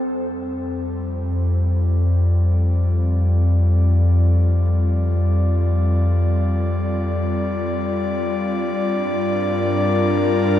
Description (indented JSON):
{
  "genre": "ambient",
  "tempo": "free time",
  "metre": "none",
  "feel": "none",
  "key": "F major",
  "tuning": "A4 = 439 Hz",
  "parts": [
    { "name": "airy breathy pad", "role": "sustained chords", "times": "0.0-10.6 s", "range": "G3 to D5", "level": "-22 LUFS", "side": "left 1 dB", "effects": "chorus" },
    { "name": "deep rumbling drone", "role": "bass", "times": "0.6-10.6 s", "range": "F2 to G2", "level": "-18 LUFS", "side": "left 1 dB", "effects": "built-in reverb, phaser" }
  ],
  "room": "moderate huge ambient reverb, RT60 8.4 s",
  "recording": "none",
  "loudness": "-17 LUFS",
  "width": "side -11 dB against mid",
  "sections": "0.0-10.6 A section",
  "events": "fade-in on analog synth pad 0.0-10.6",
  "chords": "0.0 F69; 8.0 Gm7"
}